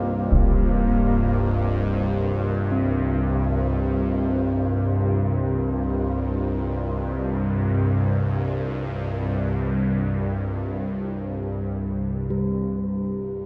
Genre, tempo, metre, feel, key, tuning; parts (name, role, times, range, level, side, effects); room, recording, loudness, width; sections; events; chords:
dark ambient drone; free time; C minor; A4 = 442 Hz
mellow duduk; melody; 0.0-2.1 s; Bb3; -31 LUFS; equal; tape echo
deep dark ambient pad; sustained chords; 0.0-13.5 s; C4 to Eb5; -34 LUFS; equal; chorus, built-in reverb
bowed-like drone; drone; 0.0-13.5 s; C2 to G2; -26 LUFS; equal; built-in reverb, phaser
concert bass drum; percussion; 0.3-0.6 s; -26 LUFS; equal; low-pass filter on kick
bronze singing bowl; texture; 2.7-13.5 s; G3 to G4; -32 LUFS; equal
wet huge ambient reverb, RT60 8.7 s; -24 LUFS; mono
0.0-12.3 A section; 12.3-13.5 B section
fade-out on ambient pad 0.0-12.3
0.0 Cm7